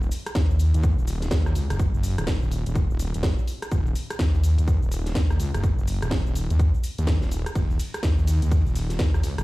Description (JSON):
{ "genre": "bass house", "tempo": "125 BPM", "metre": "4/4", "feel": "swing 62% on 16ths", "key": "Eb minor", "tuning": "A4 = 441 Hz", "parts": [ { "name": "wobble bass", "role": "bass", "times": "0.0-9.4 s", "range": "Eb1 to Eb2", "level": "-23 LUFS", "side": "equal", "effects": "chorus, sidechain pumping" }, { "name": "house drum kit", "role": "drums", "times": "0.0-9.4 s", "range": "hi-hat, ride cymbal, rim click, shaker, snare drum", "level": "-32 LUFS", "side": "equal", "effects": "none" }, { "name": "electronic kick drum", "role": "drums", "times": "0.4-9.1 s", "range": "none", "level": "-23 LUFS", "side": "equal", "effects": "none" } ], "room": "little or no reverb", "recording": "played on a big sound system in a bare room, large studio reverb", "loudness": "-21 LUFS", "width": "side -19 dB against mid", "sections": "0.0-9.4 A section", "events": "none", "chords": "none" }